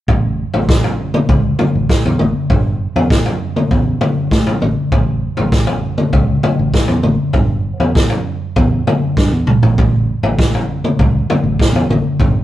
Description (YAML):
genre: psychedelic rock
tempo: 99 BPM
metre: 4/4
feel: straight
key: unclear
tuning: A4 = 440 Hz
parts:
  - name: fingered electric bass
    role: bass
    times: 0.1-12.4 s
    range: G1 to A2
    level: -18 LUFS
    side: equal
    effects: none
  - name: vintage drum kit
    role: drums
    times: 0.1-12.3 s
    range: kick drum, snare drum, toms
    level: -13 LUFS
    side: equal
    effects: none
room: light reverb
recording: rough rehearsal-room recording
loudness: -12 LUFS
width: side -14 dB against mid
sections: 0.1-12.4 A section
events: drum fill 9.2-9.8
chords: none